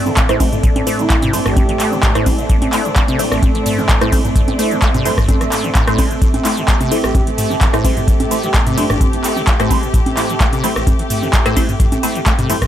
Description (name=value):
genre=acid house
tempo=129 BPM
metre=4/4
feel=straight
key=A minor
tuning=A4 = 435 Hz
part: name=dark studio string section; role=sustained chords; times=0.0-12.7 s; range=A2 to G4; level=-23 LUFS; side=equal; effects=sidechain pumping
part: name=acid bass, saw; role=riff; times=0.0-12.7 s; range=A1 to A3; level=-23 LUFS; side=equal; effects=lush chorus, cassette tape, sidechain pumping, ping-pong delay
part: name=warbly tape-like pad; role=texture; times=0.0-12.7 s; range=C4 to C6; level=-24 LUFS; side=right 3 dB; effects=chorus, built-in reverb, sidechain pumping
part: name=booming analog drum machine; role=drums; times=0.1-12.7 s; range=congas, handclaps, hi-hat, ride cymbal, rim click, shaker, toms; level=-19 LUFS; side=equal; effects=overdrive
part: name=electronic kick drum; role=drums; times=0.2-12.7 s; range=none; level=-15 LUFS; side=equal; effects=overdrive
part: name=filtered dub chord stab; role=stabs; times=0.3-12.6 s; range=A3 to C5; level=-22 LUFS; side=left 1 dB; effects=phaser, lush chorus, ping-pong delay
part: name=breathy flute-like synth lead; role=melody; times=1.0-2.1, 7.0-9.0 s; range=D4 to G4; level=-25 LUFS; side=equal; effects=chorus, tape echo
room=light reverb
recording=none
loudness=-12 LUFS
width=side -11 dB against mid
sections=0.0-12.7 A section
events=none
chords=0.0 Am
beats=0.17 | 0.64 1.10 1.57 2.03 | 2.50 2.96 3.43 3.89 | 4.36 4.82 5.29 5.75 | 6.22 6.68 7.15 7.61 | 8.08 8.54 9.01 9.47 | 9.94 10.40 10.87 11.33 | 11.80 12.26